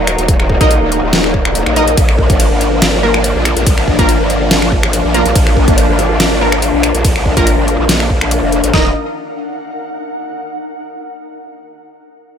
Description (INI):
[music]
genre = heavy wobble dubstep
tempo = 142 BPM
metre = 4/4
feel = half-time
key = Eb harmonic minor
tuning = A4 = 437 Hz
[part]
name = supersaw pad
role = sustained chords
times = 0.0-8.9 s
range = Eb3 to Bb5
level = -19 LUFS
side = equal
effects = phaser, sidechain pumping
[part]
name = growl bass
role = bass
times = 0.0-8.9 s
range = Eb1 to Bb1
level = -15 LUFS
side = equal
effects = distortion, chorus, overdrive
[part]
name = ethereal airy pad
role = texture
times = 0.0-10.4 s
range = D4 to Gb5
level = -20 LUFS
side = left 3 dB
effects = ensemble chorus, built-in reverb, sidechain pumping
[part]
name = dubstep drum kit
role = drums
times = 0.1-8.7 s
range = finger snaps, hi-hat, ride cymbal, snare drum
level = -17 LUFS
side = equal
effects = overdrive
[part]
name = dubstep drum kit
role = drums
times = 0.3-8.8 s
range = kick drum, snare drum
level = -13 LUFS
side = equal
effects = overdrive
[part]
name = orchestra-hit-like synth stab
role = stabs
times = 0.6-8.9 s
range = Bb3 to Eb5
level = -18 LUFS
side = right 1 dB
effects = built-in reverb, ping-pong delay
[sound]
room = little or no reverb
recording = none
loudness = -10 LUFS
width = side -8 dB against mid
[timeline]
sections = 0.0-8.7 A section; 8.7-10.4 B section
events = drop 0.0-8.7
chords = 0.0 Ebm; 2.0 Bb; 8.7 Ebm